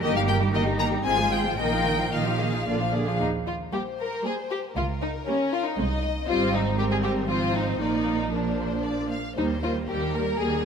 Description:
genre	quick classical-period movement for string orchestra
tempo	116 BPM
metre	3/4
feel	rubato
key	Eb major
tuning	A4 = 438 Hz
part	rich studio violin section	melody	0.0-10.7 s	Bb4 to Bb5	-31 LUFS	left 5 dB	none
part	rich studio violin section	second line	0.0-10.7 s	Db4 to F5	-28 LUFS	left 2 dB	none
part	warm studio viola section	accompaniment	0.0-10.6 s	D3 to Eb4	-29 LUFS	right 1 dB	none
part	warm studio cello section	bass	0.0-10.7 s	C2 to Bb4	-34 LUFS	right 2 dB	none
part	warm studio double bass section	bass	0.0-10.7 s	G1 to Eb2	-29 LUFS	right 3 dB	none
room	moderate concert hall reverb, RT60 2.4 s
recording	none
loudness	-23 LUFS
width	side -7 dB against mid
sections	0.0-3.2 A section; 3.2-10.7 B section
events	none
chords	0.0 Eb/G; 1.0 Fm/Ab; 1.6 Bbsus4; 2.7 Bb; 3.2 N.C.; 4.8 Dbsus2; 5.8 Ab/C (rootless); 6.3 Abmaj7; 7.3 Fm/Ab; 7.8 Bb; 9.4 Eb

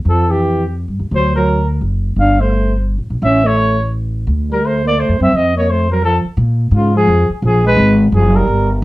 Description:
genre	jazz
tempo	171 BPM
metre	3/4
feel	swing 64% on 8ths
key	D minor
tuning	A4 = 440 Hz
part	upright bass	bass	0.0-8.8 s	F#1 to Bb2	-15 LUFS	equal	none
part	mellow trumpet	melody	0.1-8.7 s	F4 to F5	-16 LUFS	equal	slapback echo
part	breathy trombone	second line	0.1-8.7 s	Db3 to D4	-18 LUFS	right 1 dB	none
room	light reverb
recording	dry, close 1970s-style studio recording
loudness	-12 LUFS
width	side -18 dB against mid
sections	0.0-6.4 A section; 6.4-8.8 B section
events	none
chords	0.1 Fsus2; 1.1 Daug; 2.2 Gsus2; 3.2 A; 4.3 D5; 5.3 F; 6.4 Bb5; 7.4 Gbmaj9

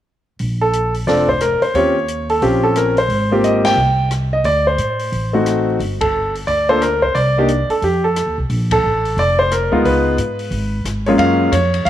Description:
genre	jazz piano trio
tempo	178 BPM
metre	4/4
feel	swing 63% on 8ths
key	Bb major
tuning	A4 = 440 Hz
part	upright bass	bass	0.4-11.9 s	F1 to A2	-20 LUFS	equal	none
part	open jazz drum kit	drums	0.4-11.9 s	hi-hat, kick drum, ride cymbal, rim click, snare drum	-30 LUFS	left 3 dB	none
part	clear grand piano	melody	0.6-11.9 s	Gb2 to G5	-15 LUFS	equal	none
room	light reverb, small room ambience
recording	1960s-style stereo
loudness	-14 LUFS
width	side -12 dB against mid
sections	0.4-11.2 A section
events	band accent 3.6, 6.0, 8.7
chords	0.4 Bbmaj9; 1.7 Eb13; 3.1 Abmaj13; 4.5 D7b9; 5.8 Gmadd9; 7.2 N.C.; 7.8 F7; 8.5 Bbmaj7(no3); 9.8 Db7; 11.2 F#maj7

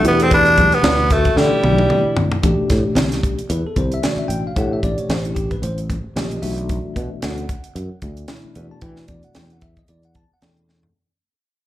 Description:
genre	electric jazz fusion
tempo	113 BPM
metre	4/4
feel	swing 56% on 16ths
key	unclear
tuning	A4 = 438 Hz
part	growling tenor saxophone	melody	0.0-2.2 s	G3 to D4	-15 LUFS	equal	slapback echo
part	hollow-body jazz guitar	second line	0.0-2.2 s	E4 to B4	-26 LUFS	right 3 dB	slapback echo
part	bell-like tine electric piano	accompaniment	0.0-10.9 s	B2 to A5	-24 LUFS	left 2 dB	medium stereo tremolo, slapback echo
part	sustaining fretless electric bass	bass	0.0-10.9 s	A1 to E3	-21 LUFS	equal	none
part	tight funk drum kit	drums	0.0-10.9 s	hi-hat, kick drum, snare drum, toms	-22 LUFS	equal	none
part	congas	percussion	0.3-6.5 s	none	-25 LUFS	right 1 dB	none
room	small room ambience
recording	live gig heard through the venue's PA, club reverb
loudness	-16 LUFS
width	side -13 dB against mid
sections	0.0-2.4 A section; 2.4-10.9 B section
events	drum fill 1.4-2.4, 10.7; fade-out 2.4-10.9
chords	0.1 Em7; 2.4 Am9; 6.4 Bm7; 8.6 E5

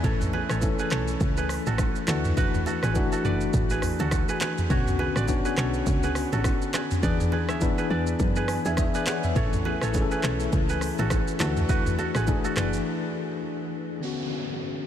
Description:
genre	afrobeats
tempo	103 BPM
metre	4/4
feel	swing 58% on 16ths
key	unclear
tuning	A4 = 443 Hz
part	bell-like tine electric piano	accompaniment	0.0-14.9 s	D3 to G#5	-28 LUFS	left 4 dB	fast stereo tremolo
part	kora	riff	0.0-13.9 s	E4 to E5	-32 LUFS	right 5 dB	ping-pong delay
part	woody log drum bass	bass	0.0-12.8 s	F#1 to F#2	-28 LUFS	equal	none
part	afro-pop drum kit	drums	0.0-12.8 s	handclaps, hi-hat, kick drum, rim click, shaker, toms	-28 LUFS	right 1 dB	none
part	congas and bongos	percussion	0.0-12.4 s	none	-38 LUFS	right 3 dB	none
part	downlifter	sound effects	14.0-14.9 s	none	-35 LUFS	equal	none
room	moderate huge ambient reverb, RT60 7.3 s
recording	dreamy mix soaked in reverb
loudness	-23 LUFS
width	side -10 dB against mid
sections	0.0-14.0 A section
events	tine electric piano fill 8.2-9.4; break 12.9-14.0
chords	0.0 A; 2.1 Dadd9; 4.7 Bmadd9; 7.0 E7; 9.4 A; 11.4 Dadd9; 14.0 Bmadd9

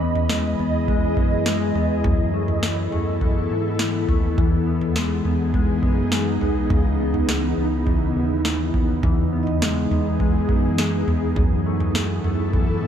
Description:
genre	dream pop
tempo	103 BPM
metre	4/4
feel	straight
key	E major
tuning	A4 = 440 Hz
part	ethereal airy pad	sustained chords	0.0-12.9 s	C#3 to D#5	-24 LUFS	right 1 dB	ensemble chorus, built-in reverb
part	mellow electric guitar	arpeggios	0.0-12.9 s	F#2 to D#4	-25 LUFS	left 4 dB	analog chorus, tape echo
part	round analog bass	bass	0.0-12.9 s	B1 to G#2	-25 LUFS	equal	none
part	booming analog drum machine	drums	0.2-12.7 s	kick drum, snare drum, toms	-23 LUFS	right 1 dB	overdrive
part	vibraphone with medium mallets	texture	9.4-10.1 s	D#5	-34 LUFS	right 7 dB	tape echo
room	light reverb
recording	none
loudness	-18 LUFS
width	side -9 dB against mid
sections	0.0-12.9 A section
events	none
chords	0.0 Emaj7; 2.0 B7sus4/F#; 4.4 Emaj7; 6.7 C#m9; 9.0 Emaj7; 11.4 B7sus4/F#

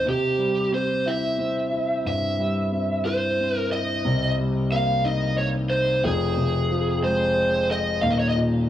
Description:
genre	pop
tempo	60 BPM (dotted quarters)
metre	6/8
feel	straight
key	unclear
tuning	A4 = 439 Hz
part	lead guitar through a small cranked amp	melody	0.0-8.4 s	G4 to F5	-24 LUFS	right 1 dB	overdrive, plate reverb, tape echo
part	warm concert grand piano	accompaniment	0.0-8.7 s	Eb1 to E4	-24 LUFS	left 1 dB	none
room	wet studio reverb, RT60 0.7 s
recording	home recording on cassette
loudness	-21 LUFS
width	side -12 dB against mid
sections	0.0-4.0 A section; 4.0-8.7 B section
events	none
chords	0.1 C; 4.0 Cm7; 6.0 Fm; 8.0 Eb5

